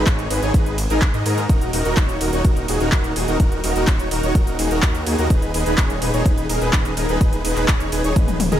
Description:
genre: EDM, festival progressive house.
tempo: 126 BPM.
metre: 4/4.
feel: straight.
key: G# minor.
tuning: A4 = 441 Hz.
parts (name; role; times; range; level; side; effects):
dense compressed supersaw; riff; 0.0-8.6 s; D#4 to D#5; -22 LUFS; equal; sidechain pumping, dub echo.
wide detuned saw bass; bass; 0.0-8.6 s; D#1 to G#2; -24 LUFS; equal; chorus, tube saturation, sidechain pumping.
big-room dance drum kit; drums; 0.1-8.6 s; handclaps, hi-hat, ride cymbal, toms; -25 LUFS; left 1 dB; none.
electronic kick drum; drums; 0.1-8.3 s; none; -17 LUFS; equal; none.
room: digital ambience.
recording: none.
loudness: -16 LUFS.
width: side -11 dB against mid.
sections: 0.0-8.6 A section.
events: drum fill 8.2-8.6.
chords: 0.0 G#m; 1.5 D#m; 5.3 G#m/D#.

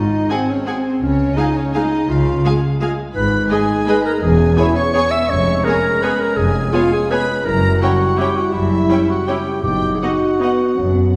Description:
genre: classical, orchestral ballroom waltz.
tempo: 151-181 BPM.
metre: 3/4.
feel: rubato.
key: B major from 3.2 s.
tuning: A4 = 440 Hz.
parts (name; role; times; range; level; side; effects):
warm chamber violin section; melody; 0.0-11.2 s; B#4 to E6; -30 LUFS; equal; none.
mellow clarinet; second line; 0.0-11.2 s; B#3 to E5; -20 LUFS; equal; none.
clear chamber double bass section; bass; 0.0-11.1 s; E1 to C#2; -25 LUFS; equal; none.
rich chamber cello section; bass; 0.0-11.1 s; E2 to C#3; -24 LUFS; equal; none.
rich chamber violin section; second line; 0.3-10.5 s; C#5 to G#5; -30 LUFS; equal; none.
rich chamber viola section; accompaniment; 0.3-10.5 s; G#3 to G#4; -28 LUFS; equal; none.
mellow French horn section; sustained chords; 0.3-11.1 s; G3 to F#4; -26 LUFS; equal; none.
timpani; percussion; 9.6-11.2 s; F#2; -30 LUFS; equal; none.
room: wet scoring stage reverb, RT60 1.5 s.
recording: heard from further back in the room.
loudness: -17 LUFS.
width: mono.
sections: 0.0-11.2 A section.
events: timpani fill 10.8-11.2.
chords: 0.0 G#7; 1.0 C#; 3.2 G#m; 4.2 C#m7/E; 5.3 C#7/E#; 7.5 F#7b9; 9.6 B/F#.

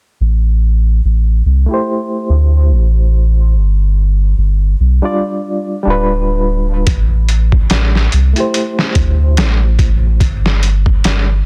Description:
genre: trip hop.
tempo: 72 BPM.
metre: 4/4.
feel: swing 57% on 16ths.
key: A minor.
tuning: A4 = 441 Hz.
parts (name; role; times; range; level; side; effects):
soft dub sub bass; bass; 0.2-11.4 s; D1 to D2; -14 LUFS; equal; none.
barky reed electric piano; accompaniment; 1.7-10.2 s; G3 to D5; -20 LUFS; equal; overdrive, fast tremolo, low-pass filter, tape echo.
trip hop sampler-style drum kit; drums; 6.9-11.3 s; hi-hat, kick drum, snare drum; -17 LUFS; equal; none.
room: little or no reverb.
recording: dense, heavily limited modern master.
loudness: -13 LUFS.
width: mono.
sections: 0.2-6.9 A section; 6.9-11.5 B section.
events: filter sweep on reed electric piano 0.2-6.9, 6.9-11.5.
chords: 0.2 Am7; 3.5 G7; 6.9 Am7; 10.2 N.C..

